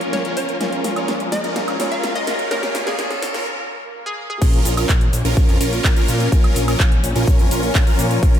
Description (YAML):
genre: EDM, festival progressive house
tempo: 126 BPM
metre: 4/4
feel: straight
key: Bb minor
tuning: A4 = 441 Hz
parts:
  - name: warm grand piano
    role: accompaniment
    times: 0.0-4.4 s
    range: Bb3 to Db5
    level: -28 LUFS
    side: right 1 dB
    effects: sidechain pumping, tape echo
  - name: dark studio string section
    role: sustained chords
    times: 0.0-8.4 s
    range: F3 to Db4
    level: -28 LUFS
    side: left 3 dB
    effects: sidechain pumping, low-pass filter
  - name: supersaw chords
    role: riff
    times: 0.0-8.4 s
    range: Db4 to Bb4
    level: -23 LUFS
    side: right 1 dB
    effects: phaser, sidechain pumping, low-pass filter, tape echo
  - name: big-room dance drum kit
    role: drums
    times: 0.0-8.4 s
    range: cabasa, crash cymbal, handclaps, hi-hat, snare drum, woodblock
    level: -25 LUFS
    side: equal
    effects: none
  - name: riser and swell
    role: sound effects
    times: 0.0-4.4 s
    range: none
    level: -31 LUFS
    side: equal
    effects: none
  - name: hollow square pluck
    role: melody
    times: 0.1-4.4 s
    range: Ab4 to F5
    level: -27 LUFS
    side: left 1 dB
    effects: chorus, vintage 12-bit sampler grit, tape echo
  - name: fat analog bass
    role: bass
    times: 0.1-8.4 s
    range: Bb1 to Bb2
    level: -24 LUFS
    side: equal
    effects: sidechain pumping, high-pass filter
  - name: electronic kick drum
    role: drums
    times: 4.4-8.3 s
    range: none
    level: -15 LUFS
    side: equal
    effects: none
room: moderate lush hall reverb, RT60 2.0 s, digital ambience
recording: dreamy mix soaked in reverb, high-pass filter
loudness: -16 LUFS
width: side -10 dB against mid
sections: 0.0-4.4 A section; 4.4-8.4 B section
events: build-up 0.0-4.4; drum fill 0.0-3.5; riser 0.0-3.5; filter sweep 0.0-4.4; break 3.5-4.4; swell 3.5-4.4; drop 4.4-8.4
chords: 0.0 Bbm